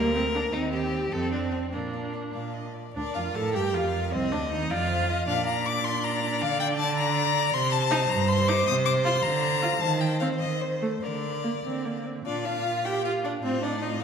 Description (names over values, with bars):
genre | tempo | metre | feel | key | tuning
quick classical-period movement for string quartet | 96-108 BPM (dotted quarters) | 6/8 | rubato | Bb major | A4 = 440 Hz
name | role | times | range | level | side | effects
warm violin | melody | 0.0-14.0 s | C5 to Eb6 | -29 LUFS | left 8 dB | none
rich violin | second line | 0.0-14.0 s | Bb3 to Eb5 | -30 LUFS | left 1 dB | none
clear viola | accompaniment | 0.0-14.0 s | A3 to A4 | -30 LUFS | right 2 dB | none
rich cello | bass | 0.0-14.0 s | C2 to Eb3 | -30 LUFS | right 4 dB | none
room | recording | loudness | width
wet scoring stage reverb, RT60 1.4 s | none | -24 LUFS | side -7 dB against mid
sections
0.0-3.0 A section; 3.0-12.3 A section; 12.3-14.0 A section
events
none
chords
0.0 Bb/D; 0.5 Cm/Eb; 1.1 F5; 1.7 Bb; 4.1 F5/C; 5.3 Bb; 6.4 Bb/D; 7.5 Cm; 8.7 F5/C; 9.2 Bb/D; 9.8 Cm/Eb; 10.4 Adim/Eb; 11.0 Bb/D; 12.3 Bb; 13.4 F7/A